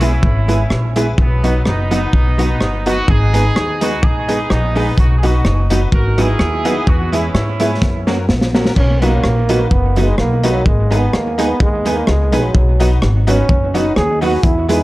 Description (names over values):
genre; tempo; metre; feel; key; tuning
ska; 127 BPM; 4/4; swing 55% on 8ths; B major; A4 = 441 Hz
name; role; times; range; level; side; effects
clear horn section; melody; 0.0-8.1 s; F#3 to A#4; -21 LUFS; right 1 dB; analog delay
vintage hollow-body jazz guitar; accompaniment; 0.0-14.8 s; F#3 to G#4; -21 LUFS; right 3 dB; analog delay
honky-tonk upright piano; stabs; 0.0-14.8 s; C#4 to B4; -24 LUFS; left 3 dB; none
upright bass; bass; 0.0-14.8 s; F#1 to G#2; -16 LUFS; equal; none
crunchy breakbeat drum kit; drums; 0.0-14.8 s; crash cymbal, hi-hat, kick drum, rim click, snare drum; -17 LUFS; equal; analog delay
clear trombone; melody; 8.8-14.8 s; F#3 to G#4; -18 LUFS; right 1 dB; analog delay
room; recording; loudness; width
light reverb; none; -12 LUFS; side -18 dB against mid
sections
0.0-8.8 A section; 8.8-14.8 B section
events
drum fill 7.8-8.8; trombone solo 8.8-14.8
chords
0.0 E; 1.2 B; 3.1 G#m; 5.0 B; 6.9 E; 7.8 F#; 8.8 B; 10.7 G#m; 12.5 B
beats
0.23 0.71 | 1.18 1.66 2.13 2.61 | 3.08 3.56 4.03 4.50 | 4.98 5.45 5.93 6.40 | 6.87 7.35 7.82 8.29 | 8.77 9.24 9.71 10.18 | 10.66 11.13 11.60 12.07 | 12.54 13.02 13.49 13.96 | 14.43